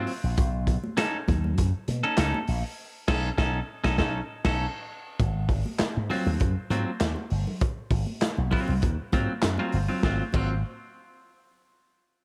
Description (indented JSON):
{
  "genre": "funk",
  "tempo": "99 BPM",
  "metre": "4/4",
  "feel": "straight",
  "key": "Ab mixolydian",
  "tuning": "A4 = 440 Hz",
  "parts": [
    { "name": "clean electric guitar", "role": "accompaniment", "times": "0.0-10.5 s", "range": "Gb3 to A4", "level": "-33 LUFS", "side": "equal", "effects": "spring reverb" },
    { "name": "slap bass with an envelope filter", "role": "bass", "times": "0.0-10.6 s", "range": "G1 to B2", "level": "-30 LUFS", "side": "equal", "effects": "none" },
    { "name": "crunchy breakbeat drum kit", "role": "drums", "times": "0.1-10.5 s", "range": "crash cymbal, handclaps, hi-hat, kick drum, snare drum", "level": "-30 LUFS", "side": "equal", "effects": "none" },
    { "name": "congas", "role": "percussion", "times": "0.1-10.6 s", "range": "none", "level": "-38 LUFS", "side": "equal", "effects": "none" }
  ],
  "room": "light reverb",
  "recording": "none",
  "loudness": "-27 LUFS",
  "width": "mono",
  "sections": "0.0-5.2 A section; 5.2-10.0 B section; 10.0-12.2 C section",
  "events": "band accent 2.8-5.2",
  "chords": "0.4 B9; 5.2 Ab6"
}